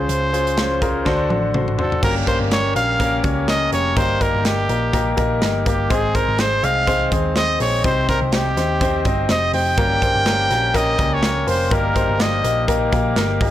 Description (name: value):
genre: piano-driven pop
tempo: 124 BPM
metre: 4/4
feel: swing 56% on 16ths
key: unclear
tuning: A4 = 442 Hz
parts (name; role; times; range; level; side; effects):
- bright trumpet; melody; 0.0-13.5 s; G4 to G5; -21 LUFS; right 1 dB; plate reverb
- clear concert grand piano; accompaniment; 0.0-13.5 s; G2 to Eb5; -21 LUFS; left 2 dB; plate reverb
- hollow-body short-scale picked electric bass; bass; 0.0-13.5 s; F1 to Eb2; -23 LUFS; right 1 dB; none
- modern studio drum kit; drums; 0.1-13.5 s; crash cymbal, handclaps, hi-hat, kick drum, snare drum, toms; -23 LUFS; right 1 dB; none
room: moderate studio reverb, RT60 0.7 s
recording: blown-out, overdriven recording, overdrive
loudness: -16 LUFS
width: side -12 dB against mid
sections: 0.0-2.0 A section; 2.0-13.5 B section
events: drum fill 1.1-2.0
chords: 0.0 Dbmaj7; 1.1 D7; 2.0 Gdim; 4.0 Eb/G; 5.9 Ab; 7.8 Cm; 9.8 Gdim; 11.7 Eb/G